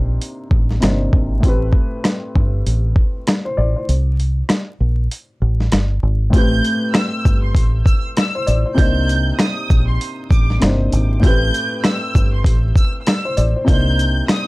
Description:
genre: hip hop, boom-bap hip-hop.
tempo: 98 BPM.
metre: 4/4.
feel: swing 59% on 16ths.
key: A minor.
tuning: A4 = 444 Hz.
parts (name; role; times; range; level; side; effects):
dark upright piano; accompaniment; 0.0-14.5 s; A2 to D5; -22 LUFS; left 1 dB; cassette tape.
deep dub fingered electric bass; bass; 0.0-14.2 s; G1 to C2; -17 LUFS; equal; none.
dusty soul sampler-style drum kit; drums; 0.2-14.5 s; hi-hat, kick drum, rim click, shaker, snare drum; -16 LUFS; equal; none.
warm studio violin section; melody; 6.3-14.5 s; C6 to G6; -24 LUFS; right 2 dB; tape echo.
room: little or no reverb.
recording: dark, warm production, vinyl crackle.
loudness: -14 LUFS.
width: side -21 dB against mid.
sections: 0.0-6.3 A section; 6.3-14.5 B section.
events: kick muted 3.9-6.3.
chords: 0.0 Cm9; 1.4 Am9; 3.9 C5; 6.3 Am9; 8.8 Cm9; 11.2 Am9; 13.7 Cm9.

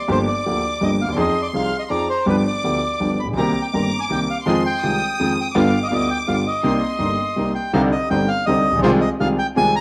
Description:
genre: tango.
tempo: 165 BPM.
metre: 3/4.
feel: rubato.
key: C minor.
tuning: A4 = 443 Hz.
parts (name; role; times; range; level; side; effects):
bandoneon; melody; 0.0-9.8 s; B4 to B5; -25 LUFS; equal; none.
rich studio violin section; second line; 0.0-7.5 s; Bb5 to Eb6; -30 LUFS; equal; none.
clear concert grand piano; accompaniment; 0.1-9.7 s; G1 to Ab4; -22 LUFS; equal; none.
warm studio string section; stabs; 3.4-9.7 s; C3 to C5; -32 LUFS; equal; none.
room: wet large studio reverb, RT60 0.9 s.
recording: dark, warm production.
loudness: -20 LUFS.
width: mono.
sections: 0.0-7.7 A section; 7.7-9.8 B section.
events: none.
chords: 0.1 Gm7; 1.2 Fm7; 2.3 G7; 3.4 Cm7; 4.5 Fm7; 5.5 G7; 6.6 Cm7; 7.7 Cmadd9; 8.8 Fm7/C.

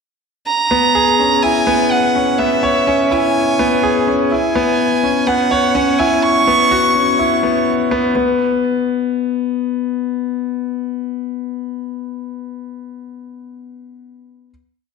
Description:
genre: electronica.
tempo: 125 BPM.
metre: 4/4.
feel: straight.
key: C# dorian.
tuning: A4 = 440 Hz.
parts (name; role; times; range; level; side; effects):
warm violin; melody; 0.5-7.7 s; E5 to C#6; -16 LUFS; right 3 dB; none.
clear grand piano; riff; 0.7-14.5 s; B3 to C#5; -16 LUFS; left 2 dB; none.
room: wet scoring stage reverb, RT60 2.1 s.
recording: none.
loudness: -13 LUFS.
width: side -5 dB against mid.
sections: 0.5-8.2 drop; 8.2-12.0 final note.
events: drop 0.5-8.2.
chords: 0.5 C#m7; 4.3 F#7sus4; 8.2 N.C..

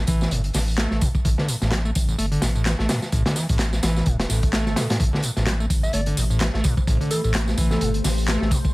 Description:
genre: breakbeat, breaks.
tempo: 128 BPM.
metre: 4/4.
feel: swing 57% on 16ths.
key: A minor.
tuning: A4 = 440 Hz.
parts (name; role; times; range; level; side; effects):
saturated sub bass; bass; 0.0-8.5 s; E1 to A1; -23 LUFS; equal; none.
overdriven acid bass; riff; 0.1-8.6 s; A1 to A3; -25 LUFS; equal; none.
crunchy breakbeat drum kit; drums; 0.1-8.7 s; hi-hat, kick drum, snare drum; -23 LUFS; equal; none.
garage drum kit; drums; 0.1-8.7 s; handclaps, hi-hat, tambourine; -30 LUFS; equal; none.
swell; sound effects; 4.3-5.0 s; none; -34 LUFS; right 1 dB; none.
deep dark ambient pad; sustained chords; 5.9-8.7 s; A3 to C5; -32 LUFS; left 2 dB; chorus, built-in reverb, sidechain pumping.
soft struck synth lead; melody; 5.8-7.9 s; A4 to E5; -30 LUFS; equal; chorus, old record sound, tape echo.
room: light reverb.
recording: vinyl crackle.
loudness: -19 LUFS.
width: side -21 dB against mid.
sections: 0.0-8.7 A section.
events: swell 4.3-5.0.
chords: 0.0 Am7.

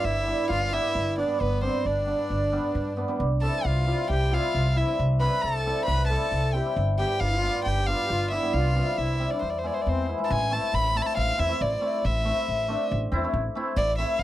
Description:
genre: klezmer.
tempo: 135 BPM.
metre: 4/4.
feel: straight.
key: C major, A harmonic minor from 10.3 s.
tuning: A4 = 440 Hz.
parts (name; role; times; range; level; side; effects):
dark violin; melody; 0.0-14.2 s; B4 to B5; -28 LUFS; right 1 dB; none.
accordion; second line; 0.0-10.1 s; B3 to C5; -31 LUFS; left 2 dB; light tremolo tuning.
cimbalom; accompaniment; 0.0-14.1 s; G3 to E4; -29 LUFS; equal; none.
upright bass; bass; 0.0-14.2 s; G1 to G2; -27 LUFS; equal; none.
room: little or no reverb.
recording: dry, close 1970s-style studio recording.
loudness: -23 LUFS.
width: side -14 dB against mid.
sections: 0.0-10.3 A section; 10.3-14.2 B section.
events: speeding up 0.0-14.2.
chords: 0.0 G; 3.2 C; 6.8 G; 8.5 C; 9.4 E; 10.3 Am.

